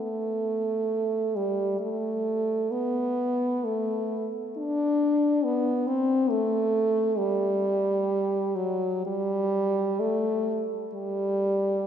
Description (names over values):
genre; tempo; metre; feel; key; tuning
classical, free, expressive piece for unaccompanied French horn; 53-69 BPM; 4/4; rubato; unclear; A4 = 441 Hz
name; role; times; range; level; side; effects
mellow French horn; solo; 0.0-11.9 s; F#3 to D4; -24 LUFS; equal; none
room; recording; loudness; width
wet church reverb, RT60 3.5 s; heard from further back in the room; -24 LUFS; side -8 dB against mid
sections
0.0-11.9 A section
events
none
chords
none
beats
0.90 | 1.82 2.73 3.64 4.55 | 5.45 6.32 7.21 8.10 | 9.06 10.01 10.95